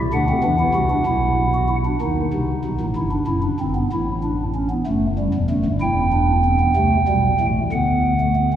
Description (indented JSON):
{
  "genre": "classical, baroque-style 3-part fugue for pipe organ",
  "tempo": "63 BPM (dotted quarters)",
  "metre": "6/8",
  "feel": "straight",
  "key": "unclear",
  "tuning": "A4 = 440 Hz",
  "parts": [
    { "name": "pipe organ, stopped flute", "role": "solo", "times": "0.0-8.6 s", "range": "E1 to G5", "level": "-17 LUFS", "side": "equal", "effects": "none" }
  ],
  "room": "wet cathedral reverb, RT60 4.3 s",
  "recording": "recorded in a church or concert hall",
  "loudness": "-17 LUFS",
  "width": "side -10 dB against mid",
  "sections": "0.0-2.0 A section; 2.0-8.6 B section",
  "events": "none",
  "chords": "0.1 D7; 1.1 Bmadd11; 2.0 B7; 3.0 Em; 3.9 A; 4.9 Emadd9; 5.8 Em; 6.8 C5; 7.7 D"
}